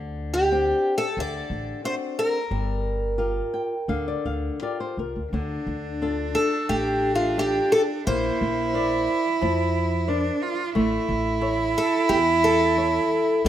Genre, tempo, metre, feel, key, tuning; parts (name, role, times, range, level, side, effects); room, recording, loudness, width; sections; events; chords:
fado-style ballad; 89 BPM; 4/4; rubato; G minor, D minor from 5.3 s; A4 = 441 Hz
flamenco guitar; accompaniment; 0.0-13.5 s; D3 to G5; -30 LUFS; left 4 dB
upright bass; bass; 0.0-13.5 s; G1 to F2; -29 LUFS; equal
picked twelve-string acoustic guitar; melody; 0.3-13.5 s; F4 to D5; -24 LUFS; left 1 dB
rich cello; second line; 5.3-13.5 s; D4 to F4; -23 LUFS; right 3 dB
moderate plate reverb, RT60 2.5 s; rough home demo mix; -21 LUFS; side -11 dB against mid
0.0-5.3 A section; 5.3-13.5 B section
nylon-string guitar fill 3.2-5.3
0.0 D7sus4; 1.2 D7; 2.5 Gm7; 5.3 Dm; 8.1 Bbadd9; 10.7 A